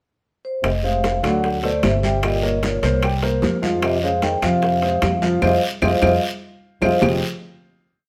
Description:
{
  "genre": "Afro-Cuban jazz",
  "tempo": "150 BPM",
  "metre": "4/4",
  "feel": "straight",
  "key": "F minor",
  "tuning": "A4 = 441 Hz",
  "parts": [
    { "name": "vibraphone with medium mallets", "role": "melody", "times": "0.4-7.0 s", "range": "C5 to G5", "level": "-25 LUFS", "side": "equal", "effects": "none" },
    { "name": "trombone with bucket mute", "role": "second line", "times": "0.6-6.9 s", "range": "Ab2 to Eb3", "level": "-29 LUFS", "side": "equal", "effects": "none" },
    { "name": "upright bass", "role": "bass", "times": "0.6-7.2 s", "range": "F1 to F2", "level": "-25 LUFS", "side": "equal", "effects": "none" },
    { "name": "bongos", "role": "percussion", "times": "0.6-7.1 s", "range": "none", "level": "-31 LUFS", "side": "equal", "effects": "none" },
    { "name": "claves", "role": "percussion", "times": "0.6-7.1 s", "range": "none", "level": "-31 LUFS", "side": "equal", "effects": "none" },
    { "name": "congas", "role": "percussion", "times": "0.6-7.1 s", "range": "none", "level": "-31 LUFS", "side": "equal", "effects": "none" },
    { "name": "guiro", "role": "percussion", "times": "0.6-7.1 s", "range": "none", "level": "-34 LUFS", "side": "equal", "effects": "none" },
    { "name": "timbales", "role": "percussion", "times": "0.6-7.1 s", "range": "none", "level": "-30 LUFS", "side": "equal", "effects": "none" },
    { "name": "warm grand piano", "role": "accompaniment", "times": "0.8-7.2 s", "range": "F3 to G5", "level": "-25 LUFS", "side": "equal", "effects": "none" }
  ],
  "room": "moderate studio reverb, RT60 0.8 s",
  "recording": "none",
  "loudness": "-19 LUFS",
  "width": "mono",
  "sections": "0.0-0.6 pickup bar; 0.6-7.0 A section; 7.0-8.1 final chord",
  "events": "band accent 5.4-7.0; drum fill 6.0-7.0",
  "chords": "0.0 N.C.; 0.6 Fm; 1.4 D7; 2.2 Gdim; 3.0 C5; 3.8 Fm7; 7.0 Fm9"
}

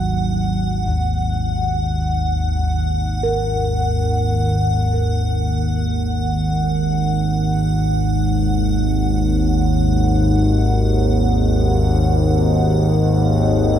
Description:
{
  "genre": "dark ambient drone",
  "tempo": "free time",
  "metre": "none",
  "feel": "none",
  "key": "unclear",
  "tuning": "A4 = 440 Hz",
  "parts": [
    { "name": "gamelan-type bossed gongs", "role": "arpeggios", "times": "0.0-10.0 s", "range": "D#2 to A#4", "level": "-25 LUFS", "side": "right 1 dB", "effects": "diffuse ambient delay" },
    { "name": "analog drone", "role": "drone", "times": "0.0-13.8 s", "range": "G#1 to D#2", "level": "-16 LUFS", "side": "equal", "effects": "chorus" },
    { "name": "icy glass pad", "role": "texture", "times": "0.0-13.8 s", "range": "F#5", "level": "-26 LUFS", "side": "equal", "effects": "chorus, built-in reverb" }
  ],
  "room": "wet huge ambient reverb, RT60 8.5 s",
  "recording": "dark, warm production",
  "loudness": "-16 LUFS",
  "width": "side -10 dB against mid",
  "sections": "0.0-13.8 A section",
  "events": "fade-out on ambient pad 0.0-13.8",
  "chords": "0.0 G#5; 12.8 D#m/G#"
}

